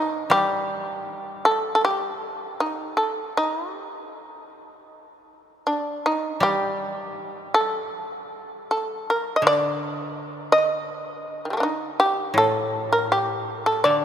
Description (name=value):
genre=japanese traditional, Japanese chamber music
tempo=80 BPM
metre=4/4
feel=rubato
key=D miyako bushi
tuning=A4 = 440 Hz
part: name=shamisen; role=melody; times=0.0-14.0 s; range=Eb3 to Eb5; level=-22 LUFS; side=equal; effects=none
part: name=koto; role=accompaniment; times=0.3-14.0 s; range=A2 to G3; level=-29 LUFS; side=left 1 dB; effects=none
room=moderate cathedral reverb, RT60 5.4 s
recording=minimal, uncompressed stereo recording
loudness=-21 LUFS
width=side -9 dB against mid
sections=0.0-14.0 A section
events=none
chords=none